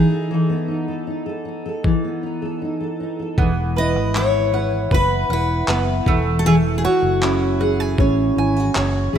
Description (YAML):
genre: acoustic pop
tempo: 78 BPM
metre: 4/4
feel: straight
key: E major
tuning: A4 = 440 Hz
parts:
  - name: picked steel-string acoustic guitar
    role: melody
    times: 0.0-9.1 s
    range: D#4 to D#5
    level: -23 LUFS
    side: left 2 dB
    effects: none
  - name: fingerpicked steel-string acoustic guitar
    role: accompaniment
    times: 0.0-9.2 s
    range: E3 to B4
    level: -20 LUFS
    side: equal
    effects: double-tracked left and right
  - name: dusty soul sampler-style drum kit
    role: drums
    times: 1.8-8.9 s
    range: handclaps, kick drum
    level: -21 LUFS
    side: equal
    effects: overdrive
  - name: mandolin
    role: arpeggios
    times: 3.4-9.2 s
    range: A3 to G#5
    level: -25 LUFS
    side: right 5 dB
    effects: none
  - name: fingered electric bass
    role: bass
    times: 3.4-9.2 s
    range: E1 to A1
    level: -22 LUFS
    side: equal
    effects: none
room: light reverb, small room reverb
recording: rough home demo mix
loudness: -17 LUFS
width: side -9 dB against mid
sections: 0.0-3.4 A section; 3.4-9.2 B section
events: none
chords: 0.0 B7/E; 3.4 Esus2; 6.1 F#madd9/E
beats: | 0.31 1.08 1.85 2.62 | 3.38 4.15 4.92 5.68 | 6.45 7.22 7.99 8.76